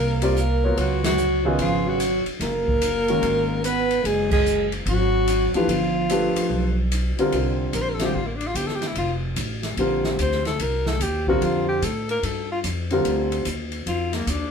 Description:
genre	modal jazz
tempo	147 BPM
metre	4/4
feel	swing 65% on 8ths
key	C dorian from 7.3 s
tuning	A4 = 440 Hz
part	breathy alto saxophone	melody	0.0-14.5 s	Bb3 to C5	-25 LUFS	left 2 dB	none
part	breathy trombone	second line	0.0-6.9 s	Eb3 to Cb4	-25 LUFS	right 4 dB	none
part	upright bass	bass	0.0-14.5 s	F1 to A2	-26 LUFS	equal	none
part	warm baby grand piano	accompaniment	0.2-13.4 s	Db3 to D5	-23 LUFS	equal	none
part	open jazz drum kit	drums	0.2-14.4 s	crash cymbal, hi-hat, kick drum, ride cymbal, snare drum	-29 LUFS	left 1 dB	none
room	moderate studio reverb, RT60 0.6 s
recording	band playing live in one room, faint mains hum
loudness	-20 LUFS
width	side -6 dB against mid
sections	0.0-7.3 A section; 7.3-14.5 B section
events	band accent 1.0, 4.3; alto saxophone solo 7.3-14.5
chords	0.0 Fsus4; 0.8 Db7sus4; 5.7 G9; 7.3 C9sus4

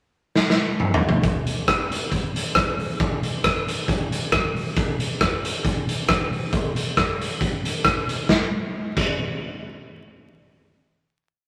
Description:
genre	ska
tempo	136 BPM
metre	4/4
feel	swing 53% on 8ths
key	none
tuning	none
part	raw garage drum kit	drums	0.4-9.1 s	crash cymbal, hi-hat, kick drum, rim click, snare drum, toms	-23 LUFS	equal	none
room	moderate studio reverb, RT60 0.8 s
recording	vinyl crackle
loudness	-23 LUFS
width	mono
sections	0.0-1.2 pickup bar; 1.2-8.3 A section; 8.3-10.1 final hit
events	drum fill 0.4-1.2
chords	none

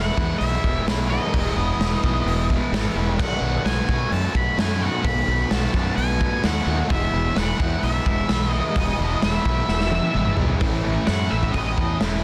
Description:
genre	rock, shoegaze and dream pop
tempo	129 BPM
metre	4/4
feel	straight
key	E major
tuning	A4 = 438 Hz
part	octave-fuzz lead guitar	melody	0.0-12.0 s	D#5 to B5	-30 LUFS	equal	distortion, analog delay
part	biting overdriven guitar	riff	0.0-12.2 s	E2 to F#4	-27 LUFS	equal	lush chorus
part	fuzz fingered electric bass	bass	0.0-12.2 s	E1 to B2	-27 LUFS	equal	overdrive
part	raw garage drum kit	drums	0.2-12.1 s	crash cymbal, hi-hat, kick drum, snare drum, toms	-27 LUFS	equal	none
room	studio ambience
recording	dense, heavily limited modern master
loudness	-22 LUFS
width	mono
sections	0.0-10.6 A section; 10.6-12.2 B section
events	drum fill 9.7-10.6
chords	0.0 Emaj7; 3.2 B7; 6.9 E; 10.6 A

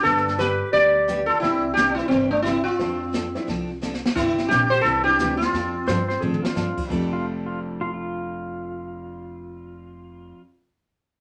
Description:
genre	country, western swing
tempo	175 BPM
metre	4/4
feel	swing 62% on 8ths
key	F major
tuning	A4 = 441 Hz
part	sitar	melody	0.0-6.5 s	C4 to D5	-23 LUFS	equal	none
part	warm clarinet	second line	0.0-6.5 s	G3 to G4	-33 LUFS	equal	none
part	bright upright piano	accompaniment	0.0-10.4 s	F2 to G4	-36 LUFS	equal	none
part	picked steel-string acoustic guitar	accompaniment	0.0-10.4 s	C3 to A4	-33 LUFS	equal	none
part	upright bass	bass	0.1-10.3 s	F1 to A2	-35 LUFS	equal	none
part	jazz brush drum kit	drums	0.1-7.0 s	brushed snare drum, crash cymbal, hi-hat, kick drum, snare drum, toms	-32 LUFS	equal	none
part	pedal steel guitar	second line	5.9-10.4 s	F4 to C5	-33 LUFS	equal	none
room	wet studio reverb, RT60 0.5 s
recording	none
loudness	-22 LUFS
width	mono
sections	0.0-4.2 A section; 4.2-6.9 B section; 6.9-9.6 C section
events	drum fill 3.8-4.2, 6.2-6.6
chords	0.1 G; 1.4 Cadd9; 2.8 F6; 4.2 Cadd9; 5.5 F6

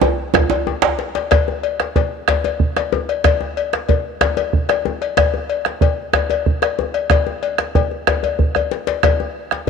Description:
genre	west african traditional, West African drum ensemble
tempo	124 BPM (dotted quarters)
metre	12/8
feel	straight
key	none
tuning	none
part	cowbell	percussion	0.0-9.2 s	none	-21 LUFS	left 11 dB	none
part	djembe	percussion	0.0-9.7 s	none	-22 LUFS	left 6 dB	none
part	djembe	percussion	0.0-1.0 s	none	-18 LUFS	right 8 dB	none
part	bombo	percussion	0.3-9.7 s	none	-19 LUFS	right 4 dB	none
room	light reverb, small room ambience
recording	1960s-style stereo with parts hard left and right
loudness	-16 LUFS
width	side -6 dB against mid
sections	0.0-1.3 A section; 1.3-9.7 B section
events	drum fill 0.0-1.3, 8.2-9.0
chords	none

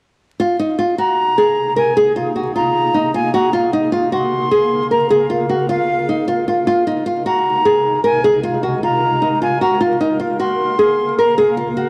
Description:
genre	hip hop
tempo	153 BPM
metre	4/4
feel	half-time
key	unclear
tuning	A4 = 443 Hz
part	nylon-string guitar	melody	0.4-11.9 s	Eb4 to Bb4	-18 LUFS	equal	tape echo
part	granular cloud pad	sustained chords	1.2-11.9 s	C3 to F5	-27 LUFS	equal	built-in reverb
part	silver concert flute	second line	1.0-11.4 s	F5 to C6	-22 LUFS	equal	tape echo
room	light reverb, small room ambience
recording	dry, gritty hardware recording, vinyl crackle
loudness	-16 LUFS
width	mono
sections	0.4-11.9 A section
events	none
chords	0.4 Abadd9; 3.5 Bbm; 6.7 Abadd9; 9.8 Bbm

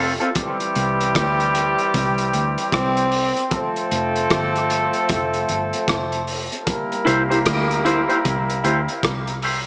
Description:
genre	dub reggae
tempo	76 BPM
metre	4/4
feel	swing 62% on 16ths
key	unclear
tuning	A4 = 440 Hz
part	electric guitar through a small old amp	accompaniment	0.0-0.3, 7.0-9.6 s	C4 to C5	-24 LUFS	equal	high-pass filter, dub echo
part	vintage muted fingered electric bass	bass	0.0-9.6 s	F1 to D2	-29 LUFS	equal	none
part	crunchy breakbeat drum kit	drums	0.2-9.7 s	hi-hat, kick drum, rim click	-27 LUFS	equal	none
part	clear horn section	second line	0.3-9.4 s	E3 to Bb4	-24 LUFS	equal	high-pass filter, dub echo
part	growling tenor saxophone	melody	2.7-3.5 s	C4	-26 LUFS	equal	dub echo
room	moderate echo chamber reverb, RT60 2.3 s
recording	small speaker sound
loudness	-20 LUFS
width	mono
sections	0.0-9.7 A section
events	none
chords	0.4 C; 3.5 F; 6.7 C

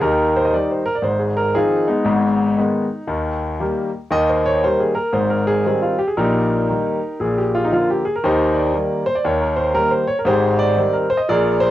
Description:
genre	jazz, stride piano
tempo	117 BPM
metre	4/4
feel	swing 64% on 8ths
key	Eb major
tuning	A4 = 440 Hz
part	clear grand piano	solo	0.0-11.7 s	Ab1 to Eb5	-16 LUFS	equal	cassette tape
room	moderate small room reverb, RT60 0.5 s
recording	home recording on cassette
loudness	-16 LUFS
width	side -14 dB against mid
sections	0.0-11.7 A section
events	none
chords	0.0 Eb; 1.0 Ab6; 2.1 Abm; 3.1 Eb; 5.1 Abmaj7; 6.2 Eb/Bb; 7.2 Bb; 8.2 Eb; 10.3 Abmaj7

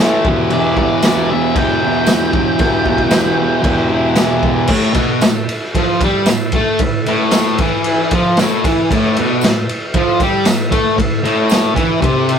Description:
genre	garage rock duo or trio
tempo	115 BPM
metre	4/4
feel	straight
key	A minor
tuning	A4 = 439 Hz
part	combo organ	sustained chords	0.0-12.4 s	E4 to D5	-26 LUFS	right 2 dB	spring reverb
part	fuzz guitar	riff	0.0-12.4 s	E2 to A3	-14 LUFS	equal	distortion
part	raw garage drum kit	drums	0.2-12.4 s	crash cymbal, kick drum, ride cymbal, snare drum	-17 LUFS	equal	none
part	octave-fuzz lead guitar	melody	0.5-4.1 s	D5 to G5	-22 LUFS	right 1 dB	distortion
part	tambourine	percussion	1.0-11.6 s	none	-29 LUFS	right 7 dB	none
room	moderate studio reverb, RT60 0.6 s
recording	rough rehearsal-room recording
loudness	-12 LUFS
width	side -7 dB against mid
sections	0.0-4.7 A section; 4.7-12.4 B section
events	none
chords	0.3 Em; 4.7 Am

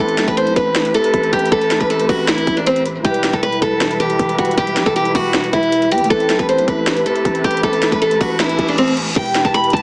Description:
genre	hip hop, trap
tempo	157 BPM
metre	4/4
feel	half-time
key	unclear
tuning	A4 = 439 Hz
part	picked steel-string acoustic guitar	melody	0.0-9.8 s	C4 to B5	-18 LUFS	equal	low-pass filter
part	warbly lo-fi synth keys	accompaniment	0.0-9.2 s	E3 to B4	-27 LUFS	equal	chorus, phaser, low-pass filter
part	dark symphonic string section	sustained chords	0.0-9.8 s	C3 to B4	-25 LUFS	equal	none
part	growling 808-style bass	bass	0.0-9.8 s	E1 to E2	-28 LUFS	equal	none
part	trap drum kit	drums	0.1-9.8 s	crash cymbal, hi-hat, kick drum, snare drum	-23 LUFS	equal	none
part	reverse cymbal	sound effects	8.5-9.2 s	none	-27 LUFS	equal	none
room	light reverb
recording	heavily compressed radio sound, small speaker sound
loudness	-16 LUFS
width	mono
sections	0.0-9.2 A section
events	reverse cymbal 8.5-9.2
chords	0.0 Amadd9; 3.0 Em; 6.1 Amadd9; 9.2 Em

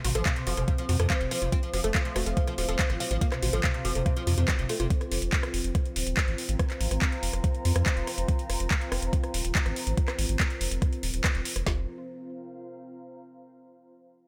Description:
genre	psychedelic trance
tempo	142 BPM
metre	4/4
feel	straight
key	F major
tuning	A4 = 436 Hz
part	oud	melody	0.0-4.9 s	C3 to C4	-35 LUFS	equal	phaser, sidechain pumping, digital delay
part	woody wave-folded pluck	riff	0.0-4.9, 11.7-11.9 s	F4 to F5	-39 LUFS	equal	chorus, sidechain pumping, digital delay
part	round analog bass	bass	0.0-11.9 s	Eb1 to F2	-31 LUFS	equal	none
part	garage drum kit	drums	0.0-11.6 s	handclaps, hi-hat, rim click	-34 LUFS	equal	overdrive, studio reverb
part	deep dark ambient pad	texture	0.2-13.3 s	C4 to Bb5	-40 LUFS	equal	chorus, built-in reverb, sidechain pumping
part	garage drum kit	drums	0.3-11.8 s	kick drum, snare drum	-29 LUFS	equal	overdrive, studio reverb
room	light reverb, digital ambience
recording	none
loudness	-27 LUFS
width	mono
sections	0.0-11.7 A section; 11.7-13.4 B section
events	none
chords	0.0 F5

